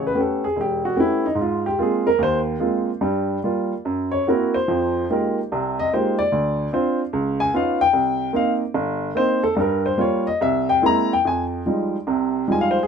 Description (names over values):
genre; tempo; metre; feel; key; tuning
solo jazz; 147 BPM; 4/4; swing 66% on 8ths, rubato; C minor; A4 = 440 Hz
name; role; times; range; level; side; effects
warm upright piano; solo; 0.0-12.9 s; E1 to Bb5; -18 LUFS; equal; none
room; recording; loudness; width
light reverb; minimal, uncompressed stereo recording; -19 LUFS; side -6 dB against mid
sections
0.0-11.2 A section; 11.2-12.9 A section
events
upright piano solo 0.0-12.9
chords
0.0 A9; 1.4 Ab69; 3.0 Gm7; 3.8 F#7#11; 4.7 Fm11; 6.3 Dm7; 7.1 Db9; 7.9 Cm7; 9.5 Gm7b5; 10.4 C7b13; 11.2 Fm9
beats
0.16 0.56 0.97 | 1.38 1.78 2.19 2.60 | 3.01 3.43 3.84 4.26 | 4.68 5.09 5.51 5.91 | 6.31 6.71 7.11 7.52 | 7.92 8.32 8.73 9.13 | 9.55 9.96 10.39 10.82 | 11.24 11.66 12.07 12.49